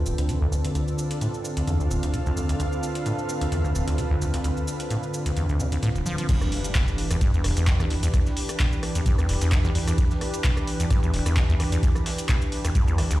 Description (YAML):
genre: acid house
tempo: 130 BPM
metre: 4/4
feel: swing 54% on 16ths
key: unclear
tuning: A4 = 440 Hz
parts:
  - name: warm analog pad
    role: sustained chords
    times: 0.0-13.2 s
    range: D3 to B4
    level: -30 LUFS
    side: equal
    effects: chorus, sidechain pumping
  - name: acid bass, saw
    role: riff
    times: 0.0-13.2 s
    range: D1 to F3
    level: -25 LUFS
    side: equal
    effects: none
  - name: granular cloud pad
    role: texture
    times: 0.0-6.3 s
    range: D4 to F5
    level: -34 LUFS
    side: right 1 dB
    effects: built-in reverb, sidechain pumping
  - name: booming analog drum machine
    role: drums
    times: 0.1-13.2 s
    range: crash cymbal, handclaps, hi-hat, rim click, shaker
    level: -33 LUFS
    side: equal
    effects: none
  - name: dusty soul sampler-style drum kit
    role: drums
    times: 6.3-13.2 s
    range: hi-hat, snare drum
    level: -41 LUFS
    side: right 1 dB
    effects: none
  - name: electronic kick drum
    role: drums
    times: 6.3-12.9 s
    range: none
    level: -23 LUFS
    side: equal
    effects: none
  - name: impact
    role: sound effects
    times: 6.3-8.1 s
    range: none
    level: -32 LUFS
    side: equal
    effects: none
room: light reverb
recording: played on a big sound system in a bare room, large studio reverb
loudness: -22 LUFS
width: side -16 dB against mid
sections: 0.0-6.3 A section; 6.3-13.2 B section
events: filter sweep on acid bass 0.0-6.3; drop 6.3-13.2; impact 6.3-8.1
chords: 0.0 Dm7; 6.3 Em7